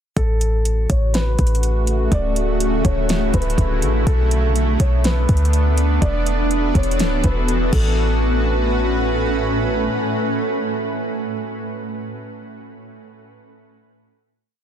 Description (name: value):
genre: hip hop, atmospheric cloud-rap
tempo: 123 BPM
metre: 4/4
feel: half-time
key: A major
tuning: A4 = 440 Hz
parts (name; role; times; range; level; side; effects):
- felt-muted upright piano; melody; 0.2-9.4 s; A4 to D5; -28 LUFS; left 2 dB; low-pass filter, ping-pong delay
- shimmering ambient pad; sustained chords; 1.1-11.2 s; A2 to B4; -21 LUFS; right 1 dB; chorus, built-in reverb
- clean 808-style bass; bass; 0.2-9.9 s; D1 to D2; -19 LUFS; equal; none
- smooth R&B drum kit; drums; 0.2-7.8 s; crash cymbal, hi-hat, kick drum, snare drum; -21 LUFS; equal; overdrive
room: little or no reverb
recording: dense, heavily limited modern master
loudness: -16 LUFS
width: side -9 dB against mid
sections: 0.2-8.0 verse; 8.0-11.9 final hit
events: none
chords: 0.2 A69; 2.1 Dmaj7; 4.1 Bm7; 6.0 E7sus4; 7.7 A69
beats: | 0.17 0.65 1.14 1.63 | 2.12 2.60 3.09 3.58 | 4.07 4.56 5.04 5.53 | 6.02 6.51 7.00 7.48 | 7.97 8.46 8.95 9.43 | 9.92 10.41 10.90